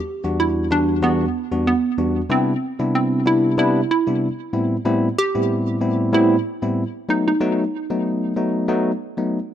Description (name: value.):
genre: afrobeats.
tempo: 94 BPM.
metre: 4/4.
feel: swing 55% on 16ths.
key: E minor.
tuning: A4 = 440 Hz.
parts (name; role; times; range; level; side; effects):
hollow square pluck; melody; 0.0-7.9 s; B3 to G4; -21 LUFS; right 2 dB; chorus, ping-pong delay.
bell-like tine electric piano; accompaniment; 0.2-9.4 s; E2 to F#4; -20 LUFS; left 1 dB; none.
room: light reverb, digital ambience.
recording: none.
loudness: -18 LUFS.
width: side -10 dB against mid.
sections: 0.0-9.5 A section.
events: none.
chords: 0.0 Em7; 2.3 Cmaj7; 4.5 Am7; 7.1 B7.